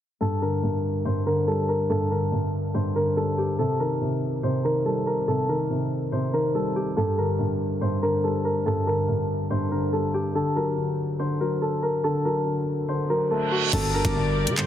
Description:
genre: hip hop, drill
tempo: 142 BPM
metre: 4/4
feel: half-time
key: G harmonic minor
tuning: A4 = 441 Hz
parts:
  - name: Celtic harp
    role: melody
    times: 0.2-14.7 s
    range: F#4 to C5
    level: -26 LUFS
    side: left 1 dB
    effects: ping-pong delay
  - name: dark concert grand piano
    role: accompaniment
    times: 0.2-14.7 s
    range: G2 to A3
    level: -25 LUFS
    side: equal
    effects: none
  - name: reverse cymbal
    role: sound effects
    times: 13.4-13.7 s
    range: none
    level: -29 LUFS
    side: right 8 dB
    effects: none
  - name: muted symphonic string section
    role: sustained chords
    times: 13.7-14.7 s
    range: G3 to D5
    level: -31 LUFS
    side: right 1 dB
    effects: none
  - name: growling 808-style bass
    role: bass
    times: 13.7-14.7 s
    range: G1 to D3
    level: -27 LUFS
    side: right 1 dB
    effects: none
  - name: drill drum kit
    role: drums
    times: 13.7-14.7 s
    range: crash cymbal, handclaps, hi-hat, kick drum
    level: -27 LUFS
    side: equal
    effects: overdrive
room: small room ambience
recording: low-pass filter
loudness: -22 LUFS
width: side -10 dB against mid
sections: 0.2-13.7 A section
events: filter sweep 0.2-13.7; reverse cymbal 13.4-13.7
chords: 0.2 Gm; 3.6 Cm; 7.0 Gm; 10.3 D; 13.7 Gm

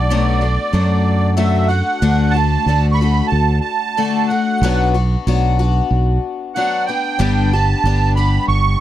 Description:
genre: folk rock and heartland rock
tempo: 93 BPM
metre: 4/4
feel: straight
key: unclear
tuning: A4 = 440 Hz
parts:
  - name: musette accordion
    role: melody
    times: 0.0-8.8 s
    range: D5 to C#6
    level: -19 LUFS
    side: right 5 dB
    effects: none
  - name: picked twelve-string acoustic guitar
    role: accompaniment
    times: 0.0-8.8 s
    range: G2 to G4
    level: -20 LUFS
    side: left 7 dB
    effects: none
  - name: fingered electric bass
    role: bass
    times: 0.0-8.7 s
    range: G1 to F#2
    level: -15 LUFS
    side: right 1 dB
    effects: none
room: little or no reverb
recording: dry, close 1970s-style studio recording, faint mains hum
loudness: -14 LUFS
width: side -12 dB against mid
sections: 0.0-2.0 A section; 2.0-8.8 B section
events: none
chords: 0.0 Bm7; 2.0 D; 4.6 Bm; 7.2 G

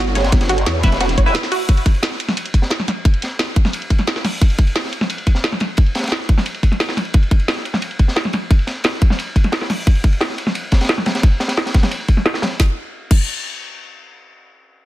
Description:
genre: dark technical drum and bass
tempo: 176 BPM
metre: 4/4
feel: straight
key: unclear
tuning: A4 = 441 Hz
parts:
  - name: wide unison pluck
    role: arpeggios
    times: 0.0-1.6 s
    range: F#4 to C#5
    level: -22 LUFS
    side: right 3 dB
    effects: auto-pan, sidechain pumping, dub echo
  - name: growl bass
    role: bass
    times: 0.0-1.3 s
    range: E1 to E2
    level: -19 LUFS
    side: equal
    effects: chorus, overdrive
  - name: crunchy breakbeat drum kit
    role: drums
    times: 0.1-12.5 s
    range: hi-hat, ride cymbal, snare drum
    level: -25 LUFS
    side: equal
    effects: high-pass filter on cymbals, high-pass filter on hats, high-pass filter on snare, high-pass filter on room
  - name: drum and bass drum kit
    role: drums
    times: 0.2-13.2 s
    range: crash cymbal, hi-hat, snare drum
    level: -20 LUFS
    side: equal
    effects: low-pass filter on snare, low-pass filter on hats, low-pass filter on cymbals, low-pass filter on room
  - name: electronic kick drum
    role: drums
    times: 0.3-13.2 s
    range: none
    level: -13 LUFS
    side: equal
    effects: none
  - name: band-passed chord stab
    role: stabs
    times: 0.8-1.3 s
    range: E4 to E5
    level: -25 LUFS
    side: left 1 dB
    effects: phaser, cassette tape, dub echo
room: little or no reverb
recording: dense, heavily limited modern master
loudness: -15 LUFS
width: side -15 dB against mid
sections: 0.0-12.6 A section; 12.6-14.0 B section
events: filter sweep on drum 0.0-12.6; break 1.3-1.7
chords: 0.0 Em; 1.7 N.C.

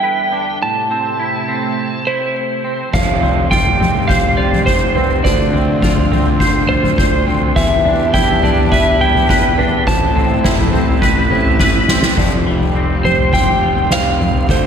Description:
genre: post-rock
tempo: 104 BPM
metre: 4/4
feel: straight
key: unclear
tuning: A4 = 439 Hz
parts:
  - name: clean lap steel guitar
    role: melody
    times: 0.0-14.7 s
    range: C5 to A5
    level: -18 LUFS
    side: right 2 dB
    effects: tape echo
  - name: warm studio string section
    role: sustained chords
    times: 0.0-14.7 s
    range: E2 to G4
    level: -24 LUFS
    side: right 4 dB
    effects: none
  - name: twangy electric guitar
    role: arpeggios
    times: 0.0-14.7 s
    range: A2 to C5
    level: -19 LUFS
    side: equal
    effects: ensemble chorus, tape echo
  - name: felt-muted upright piano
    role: arpeggios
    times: 2.9-14.7 s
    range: A4 to F5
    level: -27 LUFS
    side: right 6 dB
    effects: wide subtle chorus, tape echo
  - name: fuzz picked electric bass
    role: bass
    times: 2.9-14.7 s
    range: F1 to E2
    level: -19 LUFS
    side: equal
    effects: overdrive
  - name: soft-mallet drum kit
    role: drums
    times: 2.9-14.6 s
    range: crash cymbal, kick drum, snare drum, toms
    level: -15 LUFS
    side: left 1 dB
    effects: none
room: wet church reverb, RT60 3.1 s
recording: dreamy mix soaked in reverb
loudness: -12 LUFS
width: side -7 dB against mid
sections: 0.0-2.9 A section; 2.9-12.2 A section; 12.2-14.7 B section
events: drum fill 11.6-12.2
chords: 0.0 Em7; 0.6 Am; 2.9 Fsus2; 5.2 Dm7; 7.6 Em7; 9.9 Amadd9; 12.2 Fsus2

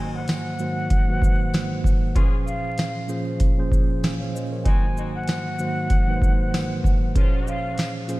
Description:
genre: hip hop, boom-bap hip-hop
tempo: 96 BPM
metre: 4/4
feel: swing 57% on 16ths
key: unclear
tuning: A4 = 437 Hz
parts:
  - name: breathy jazz flute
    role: melody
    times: 0.0-7.9 s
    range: F5 to Ab5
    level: -31 LUFS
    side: left 1 dB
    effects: high-pass filter, low-pass filter, ping-pong delay
  - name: mellow tine electric piano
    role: accompaniment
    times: 0.0-8.2 s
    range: Ab2 to Ab5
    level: -26 LUFS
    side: right 2 dB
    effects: medium stereo tremolo, cassette tape, high-pass filter, low-pass filter
  - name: warm horn section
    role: stabs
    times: 0.0-7.6 s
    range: F3 to Ab4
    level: -38 LUFS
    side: left 4 dB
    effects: high-pass filter, low-pass filter, ping-pong delay
  - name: booming analog drum machine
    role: drums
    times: 0.3-8.2 s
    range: hi-hat, kick drum, shaker, snare drum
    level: -21 LUFS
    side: equal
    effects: none
  - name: tambourine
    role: percussion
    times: 0.3-8.0 s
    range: none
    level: -47 LUFS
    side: left 11 dB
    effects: none
room: light reverb, studio reverb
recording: vinyl crackle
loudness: -20 LUFS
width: side -19 dB against mid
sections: 0.0-8.2 A section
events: none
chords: 0.0 Ab9; 2.2 Bbm9; 4.7 Ab9; 7.2 Bbm9

